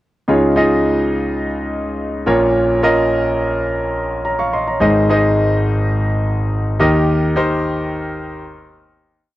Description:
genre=pop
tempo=106 BPM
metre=4/4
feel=straight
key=unclear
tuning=A4 = 440 Hz
part: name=warm concert grand piano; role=solo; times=0.3-9.4 s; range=Ab1 to Db6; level=-14 LUFS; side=equal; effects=none
room=light reverb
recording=dry, close 1970s-style studio recording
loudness=-14 LUFS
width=side -16 dB against mid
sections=0.3-9.3 pre-chorus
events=fade-out 7.1-9.3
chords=0.3 Dbadd9; 2.3 Bbm; 4.8 Ab; 6.8 Eb

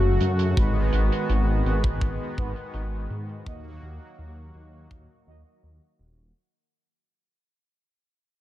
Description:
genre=synthwave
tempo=83 BPM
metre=4/4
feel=straight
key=unclear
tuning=A4 = 439 Hz
part: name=soft octave-layered synth lead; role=melody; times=0.0-0.6 s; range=F#4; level=-31 LUFS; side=left 1 dB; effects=chorus, tape echo
part: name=brassy analog pad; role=sustained chords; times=0.0-6.3 s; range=C#3 to F#4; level=-32 LUFS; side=equal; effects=chorus, tremolo, sidechain pumping
part: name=dark detuned saw bass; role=bass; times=0.0-6.3 s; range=D#1 to G#2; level=-25 LUFS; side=equal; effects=sidechain pumping
part: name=hi-hat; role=drums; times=0.2-6.3 s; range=none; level=-42 LUFS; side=right 7 dB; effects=low-pass filter on hats, low-pass filter on room
part: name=analog synth brass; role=stabs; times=0.6-5.4 s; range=G#3 to D#5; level=-35 LUFS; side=right 3 dB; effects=chorus, ping-pong delay
part: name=kick drum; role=drums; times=0.6-5.1 s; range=none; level=-26 LUFS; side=equal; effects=none
room=light reverb, small room ambience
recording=dark, warm production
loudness=-22 LUFS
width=side -14 dB against mid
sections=0.0-6.4 A section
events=fade-out 0.0-6.4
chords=0.0 F#m; 0.6 G#m7; 3.5 D#m

